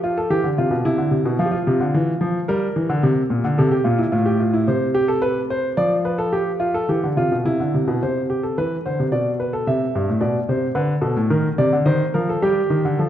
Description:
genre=classical, baroque-style two-part invention for grand piano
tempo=109 BPM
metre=3/4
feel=straight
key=unclear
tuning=A4 = 440 Hz
part: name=warm baby grand piano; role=solo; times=0.0-13.1 s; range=G2 to E5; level=-18 LUFS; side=equal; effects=none
room=wet concert hall reverb, RT60 1.9 s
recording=recorded in a church or concert hall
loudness=-18 LUFS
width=side -11 dB against mid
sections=0.0-8.0 A section; 8.0-13.1 B section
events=none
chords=0.0 G7/F; 0.8 C; 1.4 F5; 2.5 Gm; 3.0 C7; 4.1 F/A; 4.7 C5; 5.8 Dm/F; 6.3 G7(no3)/F; 7.5 C; 9.1 Bm7; 9.7 Am (rootless); 10.8 Asus24; 11.3 Eb

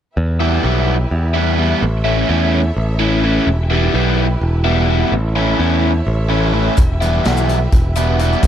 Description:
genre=psychedelic rock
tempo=254 BPM (eighths)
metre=7/8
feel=straight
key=E dorian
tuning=A4 = 438 Hz
part: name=warm studio string section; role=sustained chords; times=0.2-8.5 s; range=E4 to E5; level=-27 LUFS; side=right 2 dB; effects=none
part: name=modern bright picked electric bass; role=bass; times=0.2-8.5 s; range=E1 to E2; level=-16 LUFS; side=equal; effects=none
part: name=overdriven electric guitar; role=riff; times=0.4-8.4 s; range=E3 to E4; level=-17 LUFS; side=equal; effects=phaser
part: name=vintage drum kit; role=drums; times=6.8-8.5 s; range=hi-hat, kick drum, snare drum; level=-16 LUFS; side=equal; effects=none
part: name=maracas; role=percussion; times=6.8-8.5 s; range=none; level=-36 LUFS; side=left 10 dB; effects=dub echo
room=light reverb, small room ambience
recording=echo-heavy mix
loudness=-13 LUFS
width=side -10 dB against mid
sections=0.2-8.5 A section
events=none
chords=0.2 Em; 1.8 A; 3.5 Em; 5.1 A; 6.8 Em

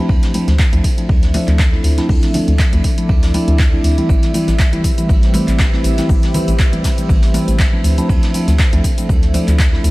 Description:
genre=deep house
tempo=120 BPM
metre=4/4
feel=swing 55% on 16ths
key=unclear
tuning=A4 = 440 Hz
part: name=deep dark ambient pad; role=sustained chords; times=0.0-9.9 s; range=F3 to E5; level=-27 LUFS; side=equal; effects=chorus, built-in reverb, vintage 12-bit sampler grit, sidechain pumping
part: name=mellow tine electric piano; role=stabs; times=0.0-9.9 s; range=E3 to E4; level=-19 LUFS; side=equal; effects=phaser, sidechain pumping, low-pass filter, tape echo
part: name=hollow knocking FM bass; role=bass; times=0.1-9.9 s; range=A1 to D2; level=-16 LUFS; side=equal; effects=tube saturation, sidechain pumping
part: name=electronic kick drum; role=drums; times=0.1-9.7 s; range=none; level=-14 LUFS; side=equal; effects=overdrive
part: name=vintage brush drum kit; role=drums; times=0.1-9.9 s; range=hi-hat, ride cymbal, snare drum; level=-31 LUFS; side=right 1 dB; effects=high-pass filter on cymbals, high-pass filter on hats, high-pass filter on snare, high-pass filter on room
part: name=punchy analog drum machine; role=drums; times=0.2-9.9 s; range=cabasa, handclaps, hi-hat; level=-25 LUFS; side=equal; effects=overdrive
part: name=congas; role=percussion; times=0.3-9.4 s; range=none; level=-26 LUFS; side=left 2 dB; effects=none
room=small room ambience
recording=vinyl crackle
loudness=-12 LUFS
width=side -20 dB against mid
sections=0.0-9.9 A section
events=none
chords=0.0 Dm9; 4.1 Am7; 7.8 Dm9

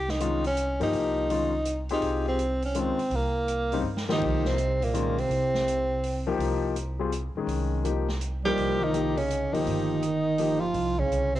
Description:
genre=modal jazz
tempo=165 BPM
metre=3/4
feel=swing 66% on 8ths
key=unclear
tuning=A4 = 440 Hz
part: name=clear tenor saxophone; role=melody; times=0.0-6.3, 8.5-11.4 s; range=Bb3 to G4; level=-27 LUFS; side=right 1 dB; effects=cassette tape
part: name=upright bass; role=bass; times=0.0-11.4 s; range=G1 to G2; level=-31 LUFS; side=right 1 dB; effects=none
part: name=swinging big-band drum kit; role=drums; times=0.1-11.4 s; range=hi-hat, kick drum, ride cymbal, snare drum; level=-39 LUFS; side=right 1 dB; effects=none
part: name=clear concert grand piano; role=accompaniment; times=0.2-10.6 s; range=Db3 to Bb4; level=-30 LUFS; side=left 6 dB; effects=cassette tape
part: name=mellow bass clarinet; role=second line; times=4.1-6.3, 8.4-11.4 s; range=Bb2 to G3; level=-31 LUFS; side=right 7 dB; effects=cassette tape
room=moderate spring reverb, RT60 2.1 s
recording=home recording on cassette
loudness=-24 LUFS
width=side -13 dB against mid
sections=0.0-11.4 A section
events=drum fill 3.8-4.2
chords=0.0 Bbmadd9/C; 6.4 Bbmadd9; 8.6 Cm7; 10.8 Bbmadd9/C (rootless)

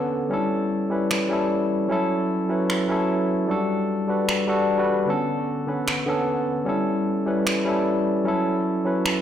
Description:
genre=future bass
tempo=151 BPM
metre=4/4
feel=swing 53% on 16ths, half-time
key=unclear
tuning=A4 = 438 Hz
part: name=barky tine electric piano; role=accompaniment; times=0.0-9.2 s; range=D3 to B4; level=-21 LUFS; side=equal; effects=medium stereo tremolo, digital delay
part: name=electronic finger snaps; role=drums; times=1.1-9.1 s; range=none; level=-26 LUFS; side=right 1 dB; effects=none
room=moderate digital room reverb, RT60 1.1 s, digital ambience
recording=played on a big sound system in a bare room, large studio reverb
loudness=-21 LUFS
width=side -10 dB against mid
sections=0.0-9.2 A section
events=none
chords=0.3 A7; 1.9 F#m7; 3.5 Gmaj9; 5.1 Bm9; 6.7 A7; 8.3 F#m7

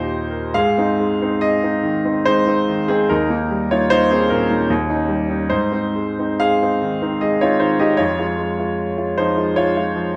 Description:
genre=classical, romantic character piece for solo piano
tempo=73 BPM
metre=3/4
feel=uneven beats, rubato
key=Ab major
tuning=A4 = 440 Hz
part: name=clear concert grand piano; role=solo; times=0.0-10.2 s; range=Eb2 to F5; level=-18 LUFS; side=equal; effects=none
room=moderate recital hall reverb, RT60 1.4 s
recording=none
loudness=-18 LUFS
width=mono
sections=0.6-10.2 A section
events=none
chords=0.0 Eb; 0.6 Ab; 3.1 Eb; 4.7 Eb7; 5.5 Ab; 8.0 Db/F

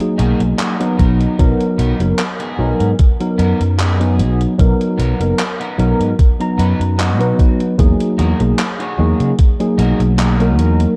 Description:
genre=vaporwave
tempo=75 BPM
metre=4/4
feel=swing 53% on 16ths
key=B major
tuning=A4 = 436 Hz
part: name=tine electric piano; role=accompaniment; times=0.0-10.9 s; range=F#3 to A#5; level=-19 LUFS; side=equal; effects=analog chorus, analog delay
part: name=gated 80s digital drum machine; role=drums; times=0.0-11.0 s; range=handclaps, hi-hat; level=-27 LUFS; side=equal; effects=gated reverb, overdrive
part: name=electric guitar at the edge of break-up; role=riff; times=0.2-10.8 s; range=B3 to C#5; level=-29 LUFS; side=equal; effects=lush chorus, analog delay
part: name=sustaining fretless electric bass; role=bass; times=0.2-10.8 s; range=F#1 to C#3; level=-18 LUFS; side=equal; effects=none
part: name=electronic kick drum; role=drums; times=1.0-9.6 s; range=none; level=-14 LUFS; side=equal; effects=overdrive
room=light reverb, digital ambience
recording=dark, warm production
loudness=-15 LUFS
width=mono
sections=0.0-11.0 A section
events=none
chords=0.0 Emaj9#11 (rootless); 1.0 Bmaj7; 7.8 Emaj9#11

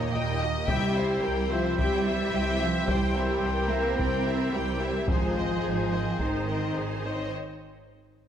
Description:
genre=cinematic, epic orchestral film score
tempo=109 BPM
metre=4/4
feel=straight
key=unclear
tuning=A4 = 440 Hz
part: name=warm symphonic violin section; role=melody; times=0.0-7.3 s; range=C5 to G5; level=-35 LUFS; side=left 3 dB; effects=none
part: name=warm symphonic violin section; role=second line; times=0.0-7.3 s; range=Ab4 to E5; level=-34 LUFS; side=left 3 dB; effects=none
part: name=warm studio viola section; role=accompaniment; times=0.0-7.3 s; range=G3 to C5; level=-36 LUFS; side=right 1 dB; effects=none
part: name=bright trombone section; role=sustained chords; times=0.0-7.3 s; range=Eb3 to C4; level=-39 LUFS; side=right 3 dB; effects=none
part: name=clear woodwind section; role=sustained chords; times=0.0-7.3 s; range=Bb3 to Eb5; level=-36 LUFS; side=right 1 dB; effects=none
part: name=warm French horn section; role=sustained chords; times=0.0-7.3 s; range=Bb3 to C5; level=-32 LUFS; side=left 4 dB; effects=none
part: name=rich studio cello section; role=bass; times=0.0-7.3 s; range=Bb2 to C4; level=-32 LUFS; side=right 3 dB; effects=none
part: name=rich symphonic double bass section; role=bass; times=0.0-7.2 s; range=Ab1 to Eb2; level=-32 LUFS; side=right 2 dB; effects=none
part: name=taiko ensemble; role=drums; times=0.7-6.7 s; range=none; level=-31 LUFS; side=equal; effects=none
room=moderate scoring stage reverb, RT60 1.8 s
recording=none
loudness=-24 LUFS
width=side -9 dB against mid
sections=0.0-8.3 A section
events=break 7.3-8.3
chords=0.0 Eb; 0.7 C; 5.1 Ab

